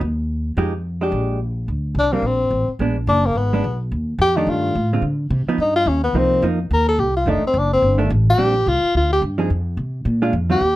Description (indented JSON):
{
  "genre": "jazz, small-group swing and bop",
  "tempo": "215 BPM",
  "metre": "4/4",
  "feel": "swing 60% on 8ths",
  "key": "Bb major",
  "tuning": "A4 = 437 Hz",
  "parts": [
    { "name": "upright bass", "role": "bass", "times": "0.0-10.8 s", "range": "F1 to D3", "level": "-20 LUFS", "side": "equal", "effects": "none" },
    { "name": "vintage hollow-body jazz guitar", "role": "accompaniment", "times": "0.6-10.6 s", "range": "D3 to Ab4", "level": "-21 LUFS", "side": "right 2 dB", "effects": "none" },
    { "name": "warm tenor saxophone", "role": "melody", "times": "2.0-10.8 s", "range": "Bb3 to Bb4", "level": "-18 LUFS", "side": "left 1 dB", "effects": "none" }
  ],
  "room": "light reverb",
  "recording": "none",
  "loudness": "-17 LUFS",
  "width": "side -16 dB against mid",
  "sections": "0.0-1.7 A section; 1.7-10.6 B section",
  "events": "tenor saxophone solo 1.7-10.8",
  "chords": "0.0 N.C.; 0.6 Fm9; 1.1 Bb6; 1.7 Bbadd9; 2.8 Bb7b9; 3.9 Ebmaj9#11; 5.0 Cmadd9; 5.6 Ebaug7; 6.2 Cm7; 7.3 F13; 8.4 Bb69; 9.5 F5; 10.1 Bb7"
}